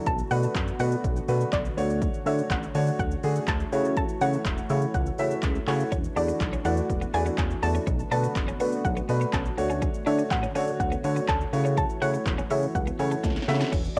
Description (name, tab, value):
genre	dance-pop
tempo	123 BPM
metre	4/4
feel	straight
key	A major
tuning	A4 = 440 Hz
part	soft round pluck	melody	0.0-14.0 s	D5 to A5	-34 LUFS	equal	chorus, cassette tape, analog delay
part	warm baby grand piano	accompaniment	0.0-14.0 s	A3 to E5	-33 LUFS	equal	sidechain pumping, cassette tape
part	chorused pulse-width pad	sustained chords	0.0-14.0 s	D3 to C#5	-38 LUFS	equal	none
part	chorused synth bass	bass	0.1-14.0 s	E1 to D3	-30 LUFS	equal	sidechain pumping
part	deep house drum kit	drums	0.1-14.0 s	crash cymbal, handclaps, hi-hat, kick drum, shaker, snare drum	-32 LUFS	equal	cassette tape
part	twelve-string electric guitar	riff	5.9-14.0 s	A3 to E4	-38 LUFS	equal	analog chorus, cassette tape
room	little or no reverb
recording	home recording on cassette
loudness	-26 LUFS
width	mono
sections	0.0-13.7 A section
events	drum fill 13.2-13.7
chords	0.1 Bm7; 1.8 Dmaj7; 3.7 A6; 5.9 E9sus4; 7.9 Bm7; 9.6 Dmaj7; 11.5 A6